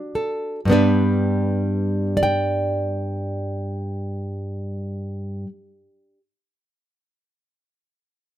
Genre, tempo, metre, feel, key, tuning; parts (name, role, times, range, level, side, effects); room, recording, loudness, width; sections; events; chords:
folk, solo fingerstyle acoustic guitar; 60 BPM; 4/4; rubato; G major; A4 = 443 Hz
nylon-string guitar; solo; 0.0-6.2 s; G2 to G5; -20 LUFS; equal
light reverb; minimal, uncompressed stereo recording; -20 LUFS; side -12 dB against mid
0.7-4.7 A section
0.0 D; 0.7 G